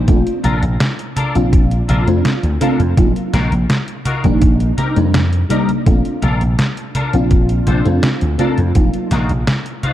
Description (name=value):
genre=vaporwave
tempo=83 BPM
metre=4/4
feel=straight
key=Bb major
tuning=A4 = 440 Hz
part: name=vintage slap bass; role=bass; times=0.0-9.4 s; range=Bb1 to F2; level=-16 LUFS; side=equal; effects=none
part: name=FM electric piano with soft pad layer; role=accompaniment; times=0.1-9.1 s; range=Gb3 to F4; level=-19 LUFS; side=equal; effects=ensemble chorus, tape echo
part: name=detuned 8-bit digital drum machine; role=drums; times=0.1-9.9 s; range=congas, hi-hat, snare drum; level=-20 LUFS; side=equal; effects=overdrive
part: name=electronic kick drum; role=drums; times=0.1-8.9 s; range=none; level=-13 LUFS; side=equal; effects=overdrive
part: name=clean electric guitar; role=riff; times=0.4-9.9 s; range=C4 to F5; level=-25 LUFS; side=left 3 dB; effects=ensemble chorus, tape echo
room=light reverb, digital ambience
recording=dark, warm production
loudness=-13 LUFS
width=side -12 dB against mid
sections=0.0-9.9 A section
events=clean electric guitar fill 9.5-9.9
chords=0.1 Bbmaj7; 3.0 Ebmadd9/Bb; 4.4 Cm7/Bb; 5.9 Bbmaj7; 8.8 Ebmadd9/Bb